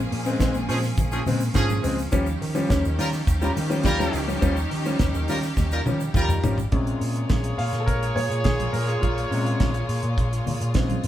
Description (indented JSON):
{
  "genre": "disco",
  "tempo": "104 BPM",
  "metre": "4/4",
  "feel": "straight",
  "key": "Bb dorian",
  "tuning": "A4 = 440 Hz",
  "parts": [
    { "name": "clear studio string section", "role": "sustained chords", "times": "0.0-11.1 s", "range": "Bb2 to Ab4", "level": "-32 LUFS", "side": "right 1 dB", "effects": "none" },
    { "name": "picked electric bass with an envelope filter", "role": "bass", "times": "0.0-11.1 s", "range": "Ab1 to Eb3", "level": "-26 LUFS", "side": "equal", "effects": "none" },
    { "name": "clear baby grand piano", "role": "accompaniment", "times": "0.1-11.0 s", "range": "Bb2 to F5", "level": "-28 LUFS", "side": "left 2 dB", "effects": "none" },
    { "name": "damped 70s drum kit", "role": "drums", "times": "0.1-11.1 s", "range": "hi-hat, kick drum, snare drum, toms", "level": "-26 LUFS", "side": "equal", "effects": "none" },
    { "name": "egg shaker", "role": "percussion", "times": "0.3-6.7 s", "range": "none", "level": "-43 LUFS", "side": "right 6 dB", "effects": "none" },
    { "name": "congas", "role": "percussion", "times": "0.4-11.1 s", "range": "none", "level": "-33 LUFS", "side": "equal", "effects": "none" },
    { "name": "warm horn section", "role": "stabs", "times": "0.7-11.0 s", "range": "F3 to Db5", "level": "-29 LUFS", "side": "equal", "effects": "none" }
  ],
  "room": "moderate stone room reverb, RT60 1.0 s",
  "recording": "band playing live in one room",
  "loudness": "-21 LUFS",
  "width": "side -12 dB against mid",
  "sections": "0.0-6.7 A section; 6.7-11.1 B section",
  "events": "drum fill 5.6-6.7; grand piano solo 6.7-11.1",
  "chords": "0.0 Bbm7; 2.1 Eb9; 6.7 Bbm7"
}